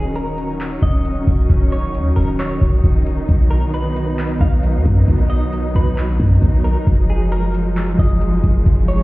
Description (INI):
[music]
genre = hip hop, atmospheric cloud-rap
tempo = 134 BPM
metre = 4/4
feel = half-time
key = Eb minor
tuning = A4 = 440 Hz
[part]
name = semi-hollow electric guitar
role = melody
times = 0.0-9.0 s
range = Ab4 to F5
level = -29 LUFS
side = equal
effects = tremolo, low-pass filter, digital delay
[part]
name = muted studio string section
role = sustained chords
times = 0.0-9.0 s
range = Eb3 to Eb4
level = -22 LUFS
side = equal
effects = sidechain pumping
[part]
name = clean 808-style bass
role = bass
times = 0.0-9.0 s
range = Eb1 to F#2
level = -17 LUFS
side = equal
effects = none
[part]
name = drifting glass-harmonics texture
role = texture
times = 0.0-9.0 s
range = D#4 to Db6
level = -34 LUFS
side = right 1 dB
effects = chorus, built-in reverb
[part]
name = booming analog drum machine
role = drums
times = 0.2-9.0 s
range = handclaps, hi-hat, kick drum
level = -16 LUFS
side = equal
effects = overdrive
[sound]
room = little or no reverb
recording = heard muffled through a wall, stone room reverb, EQ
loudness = -14 LUFS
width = side -20 dB against mid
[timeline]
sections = 0.0-9.0 A section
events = none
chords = 0.0 Ebm7; 3.3 Bmaj7; 6.9 Gbmaj9